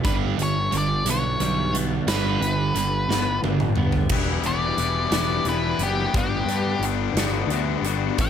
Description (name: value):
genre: quiet-loud alternative rock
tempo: 59 BPM (dotted quarters)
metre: 6/8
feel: straight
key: unclear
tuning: A4 = 441 Hz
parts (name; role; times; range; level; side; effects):
- clean electric guitar; arpeggios; 0.0-8.3 s; G2 to C#5; -30 LUFS; left 7 dB; ensemble chorus, tape echo
- thick fuzz guitar; riff; 0.0-4.1 s; G2 to G3; -26 LUFS; right 9 dB; distortion
- huge arena drum kit; drums; 0.0-8.3 s; crash cymbal, hi-hat, kick drum, snare drum, toms; -27 LUFS; equal; none
- octave-fuzz lead guitar; melody; 0.1-8.3 s; G4 to G5; -26 LUFS; equal; distortion
- fuzz picked electric bass; bass; 0.1-8.3 s; E1 to G2; -26 LUFS; equal; overdrive
- distorted electric guitar; riff; 4.1-8.3 s; G2 to E4; -27 LUFS; left 12 dB; overdrive
room: light reverb, small room ambience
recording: none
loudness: -20 LUFS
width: side -8 dB against mid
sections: 0.0-4.1 A section; 4.1-8.3 B section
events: half time 0.0-4.1; drum fill 3.1-4.1; lead electric guitar solo 4.1-8.3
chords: 0.0 G; 4.1 Em7; 6.2 Gmaj7